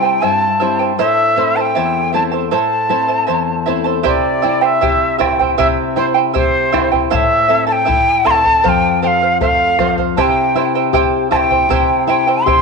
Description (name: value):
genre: andean folk, Andean ensemble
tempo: 78 BPM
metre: 2/4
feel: straight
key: unclear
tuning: A4 = 442 Hz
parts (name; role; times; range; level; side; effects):
- breathy quena; melody; 0.0-12.6 s; C5 to C6; -15 LUFS; left 1 dB; slapback echo
- charango; accompaniment; 0.0-12.6 s; E4 to A5; -17 LUFS; right 12 dB; none
- nylon-string guitar; accompaniment; 0.0-12.6 s; E2 to G4; -20 LUFS; left 14 dB; none
- bombo; percussion; 4.1-12.6 s; none; -22 LUFS; left 1 dB; none
room: light reverb, studio reverb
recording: 1960s-style stereo with parts hard left and right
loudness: -12 LUFS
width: side -4 dB against mid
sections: 0.0-4.1 A section; 4.1-12.6 A section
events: none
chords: 0.0 C; 1.0 Am; 4.1 C; 7.1 Am; 8.6 F; 10.2 C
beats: 0.22 | 0.99 1.76 | 2.52 3.29 | 4.06 4.82 | 5.59 6.35 | 7.12 7.88 | 8.64 9.41 | 10.17 10.93 | 11.70 12.46